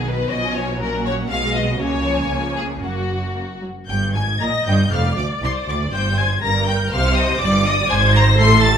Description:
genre	quick classical-period movement for string orchestra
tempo	112-125 BPM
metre	2/4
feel	rubato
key	F# major, Eb major from 3.9 s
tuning	A4 = 441 Hz
part	rich studio violin section	melody	0.0-8.8 s	D#5 to C7	-23 LUFS	left 4 dB	none
part	rich symphonic violin section	second line	0.0-8.8 s	F#4 to C6	-24 LUFS	left 4 dB	none
part	rich symphonic viola section	accompaniment	0.0-8.8 s	D#3 to Eb5	-24 LUFS	right 1 dB	none
part	rich symphonic cello section	bass	0.0-8.8 s	C2 to C#3	-23 LUFS	right 2 dB	none
part	rich symphonic double bass section	bass	0.0-8.8 s	F1 to D2	-21 LUFS	right 2 dB	none
room	moderate recital hall reverb, RT60 1.4 s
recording	minimal, uncompressed stereo recording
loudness	-16 LUFS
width	side -8 dB against mid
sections	0.0-3.9 A section; 3.9-8.8 B section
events	none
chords	0.3 C#7/B; 0.8 F#/A#; 1.3 B; 1.8 F#/C#; 2.3 C#; 2.8 F#; 3.9 Eb/G; 4.9 Dm7/F; 5.9 Gmadd11; 6.9 C5; 7.9 Abadd9

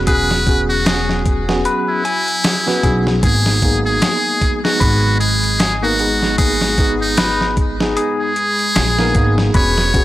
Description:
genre	trip hop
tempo	76 BPM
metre	4/4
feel	swing 58% on 16ths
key	G# minor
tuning	A4 = 440 Hz
part	trumpet with metal mute	melody	0.0-10.0 s	D#4 to C#5	-18 LUFS	equal	tape echo
part	mellow tine electric piano	accompaniment	0.0-10.0 s	A#3 to B4	-21 LUFS	equal	medium stereo tremolo, harmonic tremolo
part	deep dark ambient pad	sustained chords	0.0-10.0 s	F#3 to B5	-28 LUFS	right 1 dB	chorus, built-in reverb
part	upright bass	bass	0.0-10.0 s	E1 to B1	-19 LUFS	equal	none
part	clean electric guitar	arpeggios	0.1-9.9 s	G#4 to G#5	-24 LUFS	left 3 dB	spring reverb, tape echo
part	dusty soul sampler-style drum kit	drums	0.1-10.0 s	hi-hat, kick drum, snare drum	-18 LUFS	equal	studio reverb
room	little or no reverb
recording	dry, gritty hardware recording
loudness	-13 LUFS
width	side -15 dB against mid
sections	0.0-10.0 A section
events	none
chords	0.0 E6; 3.2 G#madd9

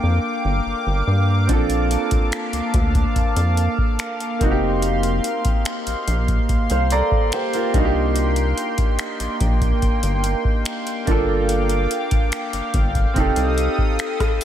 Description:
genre	contemporary R&B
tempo	72 BPM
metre	4/4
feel	straight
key	Bb major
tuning	A4 = 439 Hz
part	clear concert grand piano	accompaniment	0.0-14.4 s	Bb3 to Bb5	-24 LUFS	right 2 dB	wide subtle chorus
part	chorused pulse-width pad	sustained chords	0.0-14.4 s	Bb3 to Eb6	-24 LUFS	equal	none
part	rubbery square bass	bass	0.0-13.7 s	F1 to G2	-21 LUFS	equal	none
part	booming analog drum machine	drums	1.5-14.4 s	finger snaps, hi-hat, kick drum, rim click	-21 LUFS	equal	none
room	light reverb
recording	none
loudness	-18 LUFS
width	side -10 dB against mid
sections	0.0-14.4 A section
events	grand piano fill 6.5-8.2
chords	0.0 Gm7; 1.5 Bbmaj7; 4.4 F7sus4; 7.7 Cm7; 11.1 Gm7; 13.2 F9

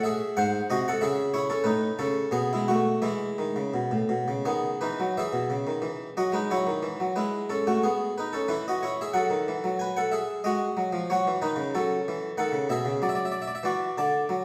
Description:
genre	classical, baroque-style suite movement for harpsichord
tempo	78-96 BPM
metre	3/4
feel	rubato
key	E major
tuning	A4 = 441 Hz
part	harpsichord	solo	0.0-14.4 s	G#2 to A5	-27 LUFS	equal	none
room	wet recital hall reverb, RT60 1.6 s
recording	heard from further back in the room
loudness	-27 LUFS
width	mono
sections	0.0-5.2 A section; 5.2-14.4 B section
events	none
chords	0.4 G#7; 1.0 C#m; 1.7 Aadd9; 2.3 B5; 3.0 E; 6.5 C#madd11; 7.2 E/G#; 9.1 F#m; 10.4 D#madd11; 11.1 F#m; 13.0 D/F#

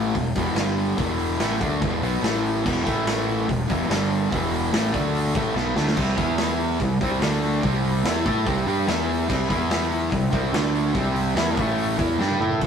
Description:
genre	garage rock duo or trio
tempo	144 BPM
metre	4/4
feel	straight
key	E minor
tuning	A4 = 440 Hz
part	fuzz guitar	riff	0.0-12.7 s	E2 to A4	-23 LUFS	equal	distortion
part	fuzz fingered electric bass	bass	0.0-12.7 s	E1 to A2	-27 LUFS	equal	overdrive
part	raw garage drum kit	drums	0.1-12.7 s	crash cymbal, hi-hat, kick drum, ride cymbal, snare drum, toms	-27 LUFS	equal	none
room	moderate stone room reverb, RT60 1.3 s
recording	rough rehearsal-room recording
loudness	-20 LUFS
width	side -7 dB against mid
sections	0.0-12.6 A section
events	drum fill 5.6-6.0, 12.2-12.6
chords	0.1 E5; 0.6 G5; 1.0 E5; 2.2 A5; 2.6 E5; 2.9 A5; 3.5 E5; 3.9 G5; 4.3 E5; 4.9 D5; 5.4 E5; 6.0 C5; 6.2 E5; 6.8 C5; 7.2 D5; 7.6 C5; 8.9 E5; 9.3 C5; 9.5 E5; 10.1 C5; 10.5 D5; 11.0 C5; 11.6 A5; 12.0 Emadd11

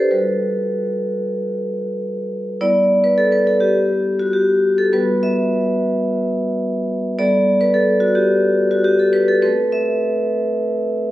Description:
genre	classical, contemporary piece for solo vibraphone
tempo	93-109 BPM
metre	4/4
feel	rubato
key	G major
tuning	A4 = 436 Hz
part	vibraphone with medium hard mallets	solo	0.0-11.1 s	G3 to E5	-15 LUFS	equal	none
room	light reverb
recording	recorded on a phone in the room, club reverb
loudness	-15 LUFS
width	side -15 dB against mid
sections	0.0-2.6 A section; 2.6-11.1 A section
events	none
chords	0.1 Gmaj9; 2.6 G6; 4.9 Emadd9/G; 7.2 Gadd9; 9.4 Am

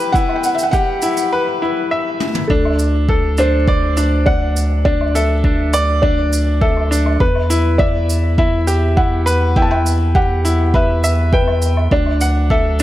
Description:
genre	piano and strings electronica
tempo	102 BPM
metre	4/4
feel	straight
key	unclear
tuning	A4 = 440 Hz
part	felt-muted upright piano	melody	0.0-12.8 s	A4 to A5	-20 LUFS	left 1 dB	digital delay
part	clear upright piano	riff	0.0-12.8 s	D4 to G5	-19 LUFS	left 1 dB	digital delay
part	electronic kick drum	drums	0.1-12.6 s	none	-17 LUFS	equal	none
part	shaker, woodblock and toms	drums	0.2-12.8 s	none	-25 LUFS	right 1 dB	none
part	round analog bass	bass	2.5-12.8 s	D2 to E2	-16 LUFS	equal	sidechain pumping
room	light reverb, small room ambience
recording	none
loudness	-13 LUFS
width	side -14 dB against mid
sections	0.0-2.5 A section; 2.5-12.8 B section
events	build-up 0.0-2.5; filter sweep on felt piano 0.0-2.5; break 1.3-2.5; drum fill 2.2; drop 2.5-12.8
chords	0.0 Emadd9; 2.5 D; 7.2 Emadd9; 11.9 D

